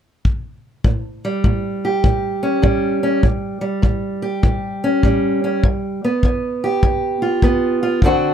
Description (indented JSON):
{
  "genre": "acoustic country blues, solo or duo",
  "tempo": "100 BPM",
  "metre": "4/4",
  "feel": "swing 66% on 8ths",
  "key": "unclear",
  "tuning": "A4 = 440 Hz",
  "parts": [
    { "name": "kick drum", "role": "drums", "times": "0.3-8.2 s", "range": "none", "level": "-17 LUFS", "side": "left 1 dB", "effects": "none" },
    { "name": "fingerpicked steel-string acoustic guitar", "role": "accompaniment", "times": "0.8-8.3 s", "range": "D2 to G4", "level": "-18 LUFS", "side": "right 1 dB", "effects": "none" }
  ],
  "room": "little or no reverb",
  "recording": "close, detailed microphones",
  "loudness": "-16 LUFS",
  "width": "side -8 dB against mid",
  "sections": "0.8-8.3 A section",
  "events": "none",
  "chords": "0.0 N.C.; 0.8 A7; 5.6 G7"
}